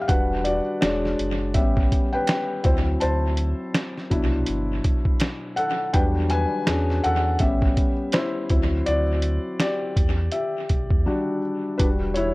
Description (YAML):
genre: lo-fi hip hop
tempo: 82 BPM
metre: 4/4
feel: swing 59% on 16ths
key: E minor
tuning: A4 = 440 Hz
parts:
  - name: felt-muted upright piano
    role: accompaniment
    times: 0.0-12.3 s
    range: B2 to A5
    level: -24 LUFS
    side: left 1 dB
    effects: low-pass filter
  - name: sub bass with octave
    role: bass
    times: 0.1-12.3 s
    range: E1 to E2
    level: -25 LUFS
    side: equal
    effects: none
  - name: lo-fi sampler-style drum kit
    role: drums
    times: 0.1-12.3 s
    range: hi-hat, kick drum, snare drum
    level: -23 LUFS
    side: equal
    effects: dub echo
  - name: finger snaps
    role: percussion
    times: 0.8-9.8 s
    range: none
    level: -42 LUFS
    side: right 5 dB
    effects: none
room: light reverb, small room ambience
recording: echo-heavy mix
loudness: -20 LUFS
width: side -22 dB against mid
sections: 0.0-11.8 A section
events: felt piano solo 0.0-11.8; drums muted 11.1-11.8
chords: 0.1 Em9; 0.8 E13; 1.6 A9; 2.7 D9; 4.1 Cmaj9#11; 5.9 Em9; 6.7 E13; 7.4 A9; 8.5 D9; 10.0 Em7; 11.8 Em9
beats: | 0.09 0.82 1.55 2.29 | 3.02 3.75 4.48 5.21 | 5.94 6.68 7.41 8.14 | 8.87 9.60 10.34 11.07 | 11.80